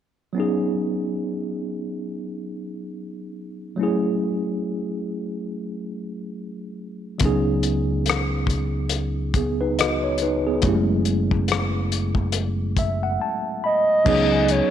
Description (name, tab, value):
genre	R&B, neo-soul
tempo	70 BPM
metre	4/4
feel	swing 57% on 16ths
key	unclear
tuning	A4 = 440 Hz
part	tine electric piano	accompaniment	0.3-14.7 s	F#3 to B5	-24 LUFS	equal	overdrive, fast stereo tremolo
part	fingered electric bass	bass	7.2-14.6 s	F#1 to C#2	-25 LUFS	equal	none
part	cloth-damped thuddy drum kit	drums	7.2-14.7 s	crash cymbal, hi-hat, kick drum, rim click	-24 LUFS	left 3 dB	none
part	hollow clarinet-like synth lead	melody	13.7-14.7 s	C#5 to D#5	-18 LUFS	right 1 dB	chorus
room	light reverb, small room ambience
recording	1960s-style stereo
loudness	-20 LUFS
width	side -10 dB against mid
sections	0.3-14.1 A section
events	tine electric piano fill 12.3-14.1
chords	0.3 C#9sus4; 3.8 F#m9; 7.2 C#9sus4; 10.6 F#m9; 14.1 C#9sus4